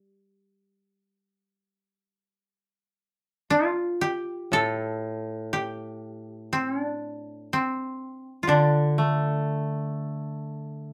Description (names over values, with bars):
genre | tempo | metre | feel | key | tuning
japanese traditional, Japanese chamber music | 56-63 BPM | 4/4 | rubato | G suspended pentatonic | A4 = 440 Hz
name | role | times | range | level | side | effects
koto | melody | 0.0-10.9 s | C4 to A4 | -28 LUFS | equal | none
shamisen | second line | 0.0-3.5 s | none | barely audible | none | none
koto | accompaniment | 4.5-10.9 s | A2 to A3 | -29 LUFS | equal | none
room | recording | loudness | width
moderate studio reverb, RT60 0.6 s | none | -27 LUFS | mono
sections
0.0-4.6 A section; 4.6-10.9 B section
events
none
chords
none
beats
| 0.49 1.46 2.46 3.51 | 4.55 5.55 6.54 7.52 | 8.49 9.47 10.43